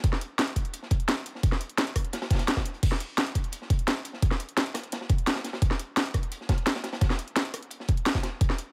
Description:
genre	drum and bass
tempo	172 BPM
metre	4/4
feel	straight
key	none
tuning	none
part	crunchy breakbeat drum kit	drums	0.0-8.7 s	hi-hat, snare drum	-40 LUFS	equal	high-pass filter on hats, high-pass filter on snare, high-pass filter on room
part	drum and bass drum kit	drums	0.0-8.7 s	crash cymbal, hi-hat, rim click, snare drum	-31 LUFS	equal	overdrive
part	electronic kick drum	drums	0.0-8.5 s	none	-28 LUFS	equal	overdrive
room	little or no reverb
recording	none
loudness	-28 LUFS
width	mono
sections	0.0-8.7 A section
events	none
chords	none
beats	| 0.04 0.39 0.73 1.08 | 1.43 1.78 2.13 2.48 | 2.83 3.18 3.53 3.88 | 4.22 4.57 4.92 5.27 | 5.62 5.97 6.32 6.67 | 7.01 7.36 7.71 8.06 | 8.41

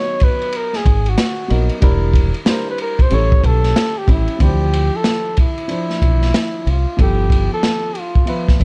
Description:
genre	hip hop, jazz-hop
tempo	93 BPM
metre	4/4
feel	swing 63% on 16ths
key	D dorian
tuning	A4 = 440 Hz
part	mellow flugelhorn	melody	0.0-8.6 s	E4 to C#5	-24 LUFS	equal	none
part	dark concert grand piano	accompaniment	0.0-8.6 s	E3 to E5	-26 LUFS	equal	none
part	crunchy breakbeat drum kit	drums	0.2-8.6 s	hi-hat, kick drum, ride cymbal, snare drum	-19 LUFS	equal	none
part	deep dub fingered electric bass	bass	0.9-8.6 s	E1 to D2	-19 LUFS	equal	none
room	small room ambience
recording	dark, warm production, nothing above 10.9 kHz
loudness	-16 LUFS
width	mono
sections	0.0-4.4 A section; 4.4-8.6 B section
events	flugelhorn solo 0.0-4.4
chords	0.0 Bmaj7; 1.8 Em7b5; 3.1 A7; 4.4 Dm9; 7.0 G13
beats	0.53 1.18 | 1.82 2.47 3.11 3.76 | 4.40 5.05 5.69 6.34 | 6.98 7.63 8.27

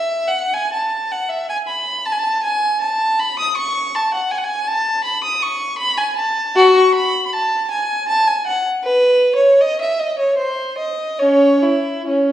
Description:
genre	classical, baroque-style suite movement for unaccompanied violin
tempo	79 BPM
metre	3/4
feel	uneven beats, rubato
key	C# minor from 4.3 s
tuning	A4 = 443 Hz
part	rich violin	solo	0.0-12.3 s	C#4 to D#6	-15 LUFS	equal	none
room	wet recital hall reverb, RT60 1.4 s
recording	heard from further back in the room, nothing above 10.3 kHz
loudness	-15 LUFS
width	side -12 dB against mid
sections	0.0-12.3 A section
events	none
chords	none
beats	0.53 1.30 | 2.06 2.82 3.58 | 4.32 5.05 5.79 | 6.58 7.34 8.10 | 8.85 9.61 10.39 | 11.21 12.07

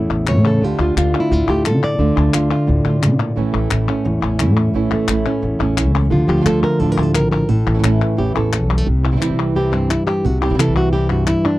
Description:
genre	flamenco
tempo	175 BPM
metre	4/4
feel	straight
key	unclear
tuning	A4 = 440 Hz
part	flamenco guitar	melody	0.0-11.6 s	E2 to D5	-17 LUFS	equal	none
part	upright bass	bass	0.0-11.3 s	A1 to D3	-18 LUFS	equal	none
part	palmas hand claps	percussion	0.1-11.6 s	none	-24 LUFS	left 7 dB	none
part	flamenco guitar	stabs	0.3-11.6 s	C3 to F4	-23 LUFS	right 6 dB	none
room	little or no reverb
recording	dry, close 1970s-style studio recording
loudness	-14 LUFS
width	side -17 dB against mid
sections	0.0-8.9 A section; 8.9-11.6 B section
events	nylon-string guitar solo 8.9-11.6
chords	0.0 A; 0.6 Dm; 3.4 A; 6.1 Dm; 7.5 A; 8.9 C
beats	0.28 | 0.62 0.97 1.31 1.66 | 2.00 2.34 2.69 3.03 | 3.37 3.71 4.06 4.40 | 4.75 5.09 5.43 5.78 | 6.12 6.46 6.81 7.15 | 7.50 7.84 8.18 8.53 | 8.87 9.22 9.56 9.90 | 10.25 10.59 10.93 11.28

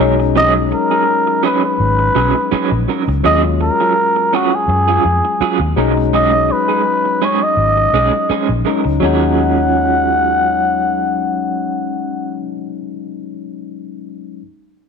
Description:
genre	soul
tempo	83 BPM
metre	4/4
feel	swing 54% on 16ths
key	Eb minor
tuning	A4 = 440 Hz
part	barky tine electric piano	accompaniment	0.0-14.4 s	F#3 to F4	-20 LUFS	left 10 dB	none
part	electric guitar through a small old amp	riff	0.0-12.6 s	F#3 to Bb4	-20 LUFS	right 12 dB	tremolo
part	vintage muted fingered electric bass	bass	0.0-12.4 s	G#1 to Gb2	-18 LUFS	equal	none
part	trumpet with cup mute	melody	0.4-12.4 s	Gb4 to Gb5	-15 LUFS	equal	none
room	moderate echo chamber reverb, RT60 1.7 s, small room ambience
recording	1960s-style stereo with parts hard left and right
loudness	-12 LUFS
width	side -6 dB against mid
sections	0.0-9.0 A section; 9.0-11.9 B section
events	none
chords	0.0 B69; 3.2 Ebm11; 5.8 B69; 9.0 Ebm11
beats	| 0.35 1.07 1.79 2.52 | 3.24 3.96 4.68 5.40 | 6.13 6.85 7.57 8.29 | 9.02 9.74 10.46 11.19

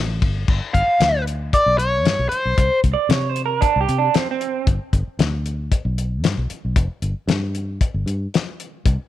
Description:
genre	straight-eighth soul blues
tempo	115 BPM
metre	4/4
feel	swing 53% on 16ths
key	G mixolydian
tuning	A4 = 442 Hz
part	fingered electric bass	bass	0.0-9.0 s	F1 to C3	-22 LUFS	equal	none
part	cloth-damped thuddy drum kit	drums	0.2-9.0 s	crash cymbal, hi-hat, kick drum, ride cymbal, snare drum	-19 LUFS	left 3 dB	none
part	biting overdriven guitar	melody	0.7-2.8 s	C5 to F5	-18 LUFS	left 1 dB	phaser
part	electric guitar through a small old amp	second line	2.9-4.7 s	C4 to D5	-21 LUFS	right 10 dB	none
room	little or no reverb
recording	1960s-style stereo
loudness	-18 LUFS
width	side -13 dB against mid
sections	0.5-9.1 A section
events	none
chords	0.5 G7; 2.6 Csus2; 4.7 G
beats	| 0.48 1.01 1.53 2.05 | 2.58 3.10 3.62 4.15 | 4.67 5.19 5.72 6.24 | 6.76 7.29 7.81 8.33 | 8.86

